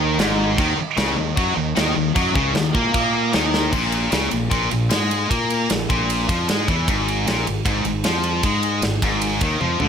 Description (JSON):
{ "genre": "hard rock", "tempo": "153 BPM", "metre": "4/4", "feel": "straight", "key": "unclear", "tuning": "A4 = 436 Hz", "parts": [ { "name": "distorted electric guitar", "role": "riff", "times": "0.0-3.7 s", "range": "Ab2 to Bb3", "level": "-25 LUFS", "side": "right 1 dB", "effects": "overdrive" }, { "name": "scooped high-gain guitar", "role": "riff", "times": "0.0-9.9 s", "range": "Ab2 to Bb3", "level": "-24 LUFS", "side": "right 10 dB", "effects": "distortion" }, { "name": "tight distorted guitar", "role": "riff", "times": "0.0-9.9 s", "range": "Ab2 to Bb3", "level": "-23 LUFS", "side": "left 11 dB", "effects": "distortion" }, { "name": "overdriven fingered electric bass", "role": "bass", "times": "0.0-9.9 s", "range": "Ab1 to Bb2", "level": "-24 LUFS", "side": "equal", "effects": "none" }, { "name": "tight metal drum kit", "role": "drums", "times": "0.2-9.9 s", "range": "crash cymbal, kick drum, ride cymbal, snare drum, toms", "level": "-23 LUFS", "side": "equal", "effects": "none" } ], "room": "light reverb, studio reverb", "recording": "none", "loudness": "-17 LUFS", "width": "side -7 dB against mid", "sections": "0.0-3.7 A section; 3.7-9.9 B section", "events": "drum fill 3.5, 9.6", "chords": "0.0 Ab5; 0.6 Eb5; 3.7 Bb5; 6.9 Ab5", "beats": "0.20 | 0.59 0.98 1.38 1.77 | 2.17 2.56 2.96 3.35 | 3.74 4.13 4.53 4.92 | 5.31 5.70 6.09 6.49 | 6.88 7.27 7.66 8.05 | 8.44 8.83 9.22 9.62" }